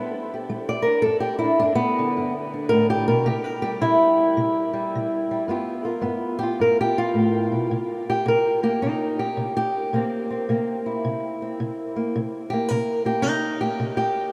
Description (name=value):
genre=acoustic country blues, solo or duo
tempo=108 BPM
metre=4/4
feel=swing 65% on 8ths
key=C mixolydian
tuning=A4 = 438 Hz
part: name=fingerpicked old ladder-braced acoustic guitar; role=solo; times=0.0-14.3 s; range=G2 to D5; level=-23 LUFS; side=equal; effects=none
room=wet huge ambient reverb, RT60 7.4 s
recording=in a vast, echoing space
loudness=-23 LUFS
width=mono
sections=0.0-7.7 A section; 7.7-14.3 A section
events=steel-string acoustic guitar solo 0.0-7.7, 7.7-14.3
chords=0.0 G; 3.3 C; 5.5 G7; 7.7 C7